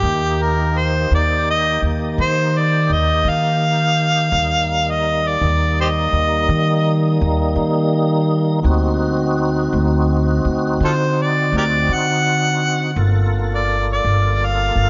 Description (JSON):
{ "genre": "slow blues", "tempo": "56 BPM (dotted quarters)", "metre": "12/8", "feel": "straight", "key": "unclear", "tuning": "A4 = 441 Hz", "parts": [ { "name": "warm harmonica", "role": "melody", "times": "0.0-14.9 s", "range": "F4 to F#5", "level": "-21 LUFS", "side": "equal", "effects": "overdrive, delay" }, { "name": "tonewheel organ", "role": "sustained chords", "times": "0.0-14.9 s", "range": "G3 to A4", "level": "-24 LUFS", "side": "equal", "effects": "slow rotary speaker, overdrive, chorus vibrato" }, { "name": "upright bass", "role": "bass", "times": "0.0-14.9 s", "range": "G1 to Eb3", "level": "-21 LUFS", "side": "equal", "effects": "none" } ], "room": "moderate plate reverb, RT60 3.8 s", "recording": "dreamy mix soaked in reverb, nothing above 7.5 kHz", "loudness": "-17 LUFS", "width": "mono", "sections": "0.0-14.9 A section", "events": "none", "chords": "0.0 Eb; 8.6 D7b9; 13.0 Gm9", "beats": "| 0.03 1.11 2.18 3.26 | 4.34 5.41 6.49 7.57 | 8.65 9.72 10.80 11.88 | 12.96 14.04" }